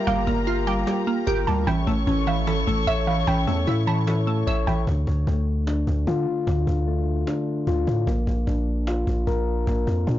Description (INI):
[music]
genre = hip hop, trap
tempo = 150 BPM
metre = 4/4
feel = half-time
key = D harmonic minor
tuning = A4 = 440 Hz
[part]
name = soft round pluck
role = second line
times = 0.0-4.9 s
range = E5 to A5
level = -30 LUFS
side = right 4 dB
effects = chorus, digital delay
[part]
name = glassy wavetable pluck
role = accompaniment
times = 0.0-4.9 s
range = E3 to E5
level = -25 LUFS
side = right 2 dB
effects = chorus
[part]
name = dark studio string section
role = sustained chords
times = 0.0-4.8 s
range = F4 to C#6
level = -32 LUFS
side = left 3 dB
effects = none
[part]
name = soft electric-piano-like synth keys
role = arpeggios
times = 0.0-10.2 s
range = D3 to C#5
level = -26 LUFS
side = left 2 dB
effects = chorus, low-pass filter, digital delay
[part]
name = long sustained 808-style bass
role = bass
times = 0.1-10.2 s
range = G1 to D3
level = -24 LUFS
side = equal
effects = none
[part]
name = cajon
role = drums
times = 0.1-10.2 s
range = none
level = -35 LUFS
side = equal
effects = none
[sound]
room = little or no reverb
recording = blown-out, overdriven recording, overdrive, nothing above 7.5 kHz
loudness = -21 LUFS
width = side -13 dB against mid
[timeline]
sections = 0.0-4.9 A section; 4.9-10.2 B section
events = hi-hats muted 4.9-10.2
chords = 0.0 Gm7; 1.7 A; 4.9 Dm; 8.1 Bb